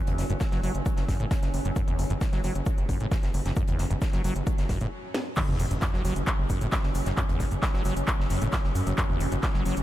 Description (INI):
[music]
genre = driving peak-time techno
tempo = 133 BPM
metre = 4/4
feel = straight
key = unclear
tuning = A4 = 440 Hz
[part]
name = metallic inharmonic drone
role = drone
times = 0.0-9.8 s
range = F#3 to C#4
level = -36 LUFS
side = equal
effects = chorus, built-in reverb, sidechain pumping
[part]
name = acid bass, saw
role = riff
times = 0.1-9.8 s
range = E2 to F#3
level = -32 LUFS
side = equal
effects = wide subtle chorus, sidechain pumping, diffuse ambient delay
[part]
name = gritty driven synth bass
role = bass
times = 0.1-9.8 s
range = E1 to F#2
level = -29 LUFS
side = equal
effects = distortion, tube saturation, sidechain pumping
[part]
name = modern studio drum kit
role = drums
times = 0.1-9.8 s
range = hi-hat, shaker, snare drum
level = -45 LUFS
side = left 1 dB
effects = high-pass filter on hats, high-pass filter on snare, high-pass filter on perc, high-pass filter on room
[part]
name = techno drum kit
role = drums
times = 0.1-9.8 s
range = crash cymbal, handclaps, hi-hat, shaker, snare drum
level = -33 LUFS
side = equal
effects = sidechain pumping on hats, sidechain pumping on cymbals, sidechain pumping on perc
[part]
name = electronic kick drum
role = drums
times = 0.4-9.5 s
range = none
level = -27 LUFS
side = equal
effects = none
[part]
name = sub drop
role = sound effects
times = 5.4-7.2 s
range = none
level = -36 LUFS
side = equal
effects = none
[sound]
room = little or no reverb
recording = none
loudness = -24 LUFS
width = side -14 dB against mid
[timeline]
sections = 0.0-5.4 A section; 5.4-9.8 B section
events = filter sweep on acid bass 0.0-5.4; stop 4.9-5.4; drum fill 5.1; drop 5.4-9.8; impact 5.4-7.2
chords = 0.0 F#5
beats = 0.41 0.86 1.31 | 1.76 2.21 2.66 3.11 | 3.56 4.02 4.47 4.92 | 5.37 5.82 6.27 6.72 | 7.17 7.63 8.08 8.53 | 8.98 9.43